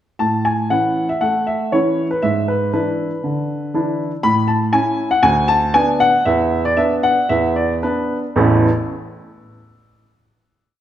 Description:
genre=classical-period piano sonatina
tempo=117 BPM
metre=4/4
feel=uneven beats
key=A major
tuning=A4 = 440 Hz
part: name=warm baby grand piano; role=solo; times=0.2-8.7 s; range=A1 to B5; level=-15 LUFS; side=equal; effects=none
room=wet recital hall reverb, RT60 1.7 s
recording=none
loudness=-15 LUFS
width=side -11 dB against mid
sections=0.2-8.4 theme; 8.4-10.5 final chord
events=slowing down 3.2-8.4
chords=0.2 A; 2.2 E7/G#; 4.2 A; 5.2 Bm/D; 6.3 E5; 8.4 A

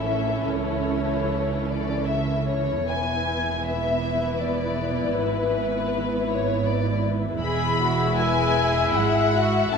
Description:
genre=classical, slow romantic movement for string orchestra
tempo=78 BPM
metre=3/4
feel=rubato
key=unclear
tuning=A4 = 440 Hz
part: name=dark studio violin section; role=melody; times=0.0-9.8 s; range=B4 to B5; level=-27 LUFS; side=left 4 dB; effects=none
part: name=dark studio violin section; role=second line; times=0.0-9.8 s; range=E4 to E5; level=-27 LUFS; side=left 5 dB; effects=none
part: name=warm studio viola section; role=accompaniment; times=0.0-9.8 s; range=E3 to E4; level=-28 LUFS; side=right 1 dB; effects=none
part: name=dark studio cello section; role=bass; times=0.0-9.8 s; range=E2 to C#3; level=-29 LUFS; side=right 4 dB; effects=none
part: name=dark studio double bass section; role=bass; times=0.0-9.8 s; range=E1 to C#2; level=-30 LUFS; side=right 5 dB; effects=none
room=wet scoring stage reverb, RT60 1.9 s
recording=minimal, uncompressed stereo recording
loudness=-21 LUFS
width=side -6 dB against mid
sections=0.0-9.8 A section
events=none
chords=0.0 A; 0.5 A/C#; 2.9 E; 5.2 E/G#; 7.4 Eadd9

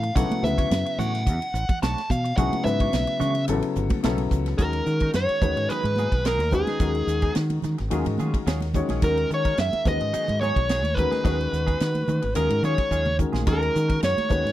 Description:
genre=electric jazz fusion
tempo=108 BPM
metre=4/4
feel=swing 54% on 16ths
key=B minor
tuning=A4 = 440 Hz
part: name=dark smooth lead guitar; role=melody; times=0.0-14.5 s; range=G#4 to A5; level=-26 LUFS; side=equal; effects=overdrive, slapback echo
part: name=clean electric guitar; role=stabs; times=0.0-14.5 s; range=Gb3 to C#5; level=-35 LUFS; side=right 6 dB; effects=wide subtle chorus, slapback echo
part: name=fingered electric bass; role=bass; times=0.0-14.5 s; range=G1 to Eb3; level=-26 LUFS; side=equal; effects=none
part: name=tight funk drum kit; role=drums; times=0.0-14.5 s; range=hi-hat, kick drum, ride cymbal, snare drum, toms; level=-26 LUFS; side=equal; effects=none
part: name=dark baby grand piano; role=accompaniment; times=0.2-14.5 s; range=C#3 to Db5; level=-28 LUFS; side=left 4 dB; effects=none
part: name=congas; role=percussion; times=0.3-14.4 s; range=none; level=-33 LUFS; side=right 4 dB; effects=none
part: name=hollow-body jazz guitar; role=second line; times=4.6-14.5 s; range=G#4 to Fb5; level=-30 LUFS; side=right 2 dB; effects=none
room=small room ambience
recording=dry, close 1970s-style studio recording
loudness=-21 LUFS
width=side -14 dB against mid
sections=0.0-4.6 A section; 4.6-14.5 B section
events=lead electric guitar solo 0.0-4.6; grand piano fill 8.2-9.0; drum fill 12.9-13.5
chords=0.2 Bm9; 2.4 E13/B; 3.5 A13; 4.0 F#m7; 4.6 Gb69/Eb; 5.4 Bmaj13; 6.8 Db7sus4/Eb; 7.9 Ebm11; 9.0 Gb13/Eb; 9.9 Bmaj13; 11.2 Db7sus4/Eb; 12.4 Ebm11; 13.5 Gb69/Eb

